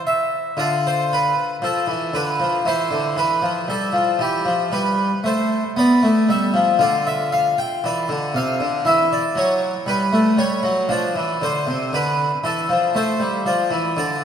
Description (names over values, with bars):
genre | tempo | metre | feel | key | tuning
classical, baroque-style suite movement for harpsichord | 58 BPM | 4/4 | rubato | unclear | A4 = 440 Hz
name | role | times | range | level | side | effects
harpsichord | solo | 0.0-14.2 s | C3 to G5 | -17 LUFS | equal | none
room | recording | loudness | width
wet concert hall reverb, RT60 2.5 s | none | -17 LUFS | side -8 dB against mid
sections
0.0-14.2 A section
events
none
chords
0.0 N.C.; 0.6 Dm13; 2.6 Dm11; 6.8 Dm; 8.9 Em13; 10.9 Dm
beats
0.58 1.62 | 2.64 3.67 4.71 5.76 | 6.80 7.83 8.86 9.88 | 10.90 11.93 12.95 13.97